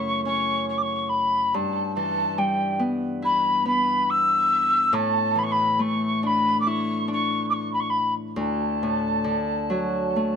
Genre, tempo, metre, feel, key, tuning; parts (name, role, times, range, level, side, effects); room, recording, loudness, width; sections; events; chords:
celtic folk, Celtic slow air; 70 BPM; 4/4; rubato; E dorian; A4 = 440 Hz
mellow hollow mid whistle; melody; 0.0-10.4 s; G5 to E6; -22 LUFS; left 1 dB
Celtic harp; accompaniment; 0.0-10.4 s; D2 to E4; -26 LUFS; left 1 dB
light reverb; close, detailed microphones; -21 LUFS; side -7 dB against mid
0.0-10.4 A section
0.0 F#m7; 1.5 Em/G; 4.9 Asus4; 8.4 D